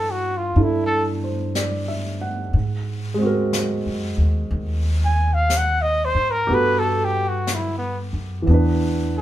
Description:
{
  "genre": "jazz ballad",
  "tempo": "61 BPM",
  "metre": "4/4",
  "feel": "swing 66% on 8ths",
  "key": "unclear",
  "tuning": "A4 = 441 Hz",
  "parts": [
    { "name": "breathy trumpet", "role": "melody", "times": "0.0-9.2 s", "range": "B3 to Ab5", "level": "-21 LUFS", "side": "equal", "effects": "none" },
    { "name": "warm grand piano", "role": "accompaniment", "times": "0.0-9.2 s", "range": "E3 to F#5", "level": "-23 LUFS", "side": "right 2 dB", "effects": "none" },
    { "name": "upright bass", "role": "bass", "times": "0.0-9.2 s", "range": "Eb2 to Ab2", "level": "-22 LUFS", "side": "equal", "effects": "none" },
    { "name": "jazz brush drum kit", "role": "drums", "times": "0.6-9.2 s", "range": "brushed snare drum, hi-hat, snare drum", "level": "-32 LUFS", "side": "left 3 dB", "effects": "none" }
  ],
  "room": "moderate studio reverb, RT60 0.6 s",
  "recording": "band playing live in one room",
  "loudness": "-19 LUFS",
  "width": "side -13 dB against mid",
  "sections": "0.0-9.2 A section",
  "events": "trumpet solo 0.0-9.2",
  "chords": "0.0 C69; 2.5 Ab9; 6.5 Gmaj9; 8.5 E5"
}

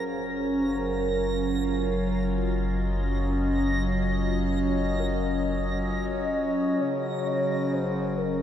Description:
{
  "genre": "ambient",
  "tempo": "free time",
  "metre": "none",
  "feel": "none",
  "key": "unclear",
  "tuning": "A4 = 440 Hz",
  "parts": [
    { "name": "evolving wavetable pad", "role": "sustained chords", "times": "0.0-8.4 s", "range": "Gb3 to F5", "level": "-27 LUFS", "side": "right 1 dB", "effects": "chorus, built-in reverb, phaser" },
    { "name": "mellow tine electric piano", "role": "arpeggios", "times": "0.0-8.4 s", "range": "Ab4 to Eb5", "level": "-43 LUFS", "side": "left 1 dB", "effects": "none" },
    { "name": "deep rumbling drone", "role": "bass", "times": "0.5-8.4 s", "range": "Gb1", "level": "-30 LUFS", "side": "left 1 dB", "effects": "built-in reverb" },
    { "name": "hand-pumped harmonium", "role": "drone", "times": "0.0-8.4 s", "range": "Db3 to Db4", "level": "-33 LUFS", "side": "left 3 dB", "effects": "none" },
    { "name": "backwards swelling texture", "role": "texture", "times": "0.0-6.8 s", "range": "Bb6", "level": "-38 LUFS", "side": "right 1 dB", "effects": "built-in reverb" },
    { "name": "warm velvety synth lead", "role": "melody", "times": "5.9-8.4 s", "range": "Bb4 to Eb5", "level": "-30 LUFS", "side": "equal", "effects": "chorus, diffuse ambient delay" }
  ],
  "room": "wet huge ambient reverb, RT60 8.3 s",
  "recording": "dark, warm production",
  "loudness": "-24 LUFS",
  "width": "side -10 dB against mid",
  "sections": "0.0-6.8 A section; 6.8-8.4 B section",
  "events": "none",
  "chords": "0.0 Ebm7/Gb; 6.8 Gbmaj7"
}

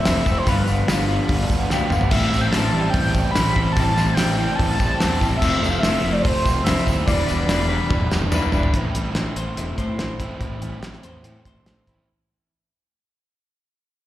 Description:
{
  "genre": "indie rock",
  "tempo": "145 BPM",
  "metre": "4/4",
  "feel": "straight",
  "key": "A minor",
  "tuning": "A4 = 440 Hz",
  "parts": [
    { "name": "overdriven synth lead", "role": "melody", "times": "0.0-7.9 s", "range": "B4 to B5", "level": "-25 LUFS", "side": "equal", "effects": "chorus, slapback echo, tape echo" },
    { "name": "clean electric guitar", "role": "riff", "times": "0.0-12.1 s", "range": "G2 to C5", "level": "-25 LUFS", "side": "left 5 dB", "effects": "none" },
    { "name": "overdriven electric guitar", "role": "riff", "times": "0.0-12.1 s", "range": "E2 to G4", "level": "-27 LUFS", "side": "right 5 dB", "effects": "analog chorus, slapback echo" },
    { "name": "fuzz fingered electric bass", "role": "bass", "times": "0.1-12.0 s", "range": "E1 to A2", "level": "-23 LUFS", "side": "equal", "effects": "overdrive" },
    { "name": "cloth-damped thuddy drum kit", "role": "drums", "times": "0.1-12.0 s", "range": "crash cymbal, hi-hat, kick drum, snare drum, toms", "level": "-23 LUFS", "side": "equal", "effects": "none" },
    { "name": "tambourine", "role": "percussion", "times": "0.1-8.6 s", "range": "none", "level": "-38 LUFS", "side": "right 2 dB", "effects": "none" },
    { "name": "tonewheel organ", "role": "sustained chords", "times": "2.1-8.7 s", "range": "F3 to A5", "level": "-35 LUFS", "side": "right 1 dB", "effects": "none" }
  ],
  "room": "studio ambience",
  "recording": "live gig heard through the venue's PA, recital hall reverb",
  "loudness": "-18 LUFS",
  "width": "side -14 dB against mid",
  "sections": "0.0-8.7 A section; 8.7-12.1 B section",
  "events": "drum fill 1.7-2.1, 7.9-8.7; fade-out 8.7-12.1",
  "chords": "0.5 G7; 2.1 Am7; 5.4 Fmaj7; 7.1 Em7; 8.7 Am7"
}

